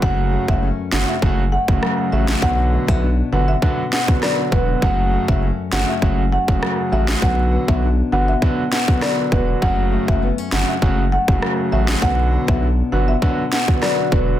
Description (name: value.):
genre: dancehall.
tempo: 100 BPM.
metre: 4/4.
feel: straight.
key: B minor.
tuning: A4 = 438 Hz.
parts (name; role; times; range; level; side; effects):
marimba with medium mallets; melody; 0.0-14.2 s; B4 to F#5; -24 LUFS; left 1 dB; digital delay.
clear concert grand piano; accompaniment; 0.0-14.4 s; C#3 to F#4; -23 LUFS; right 2 dB; none.
nylon-string guitar; arpeggios; 0.0-14.4 s; F#2 to D4; -26 LUFS; left 5 dB; none.
saturated sub bass; bass; 0.0-14.4 s; E1 to B1; -20 LUFS; equal; none.
island pop drum kit; drums; 0.0-14.3 s; kick drum, rim click, snare drum; -20 LUFS; equal; none.
room: light reverb, studio ambience.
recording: dense, heavily limited modern master.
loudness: -16 LUFS.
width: side -12 dB against mid.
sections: 0.0-14.4 A section.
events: none.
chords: 0.0 F#m; 2.4 Bm; 4.8 F#m; 7.2 Bm; 9.6 F#m; 12.0 Bm.